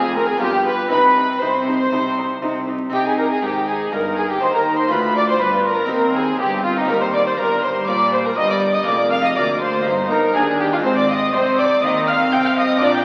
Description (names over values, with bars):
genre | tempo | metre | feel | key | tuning
classical, baroque-style concerto movement with solo episodes | 121 BPM | 4/4 | straight | C minor | A4 = 439 Hz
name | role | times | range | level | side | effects
mellow alto recorder | melody | 0.0-13.0 s | F4 to G5 | -28 LUFS | equal | none
warm chamber violin section | melody | 0.0-13.0 s | Eb5 to G6 | -26 LUFS | equal | none
warm chamber violin section | second line | 0.0-13.0 s | Eb4 to G5 | -22 LUFS | equal | none
harpsichord | accompaniment | 0.0-13.0 s | D2 to C5 | -30 LUFS | equal | none
rich chamber cello section | bass | 0.0-13.0 s | D2 to Eb3 | -29 LUFS | equal | none
rich chamber double bass section | bass | 0.0-13.0 s | F1 to Eb2 | -35 LUFS | equal | none
dark studio viola section | accompaniment | 0.2-13.0 s | G3 to F4 | -26 LUFS | equal | none
room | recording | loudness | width
wet scoring stage reverb, RT60 1.9 s | very old 78 rpm record, vinyl crackle | -18 LUFS | mono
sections
0.0-2.9 A section; 2.9-13.0 A section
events
none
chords
0.4 G7; 0.9 Cm; 4.9 G5/D; 5.9 Cm/Eb; 6.9 Eb; 8.9 Bb7/F; 9.9 Eb/G; 10.8 Ab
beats
0.41 | 0.92 1.42 1.92 2.42 | 2.92 3.42 3.92 4.42 | 4.91 5.41 5.90 6.40 | 6.89 7.39 7.88 8.38 | 8.87 9.37 9.86 10.35 | 10.85 11.34 11.83 12.32 | 12.81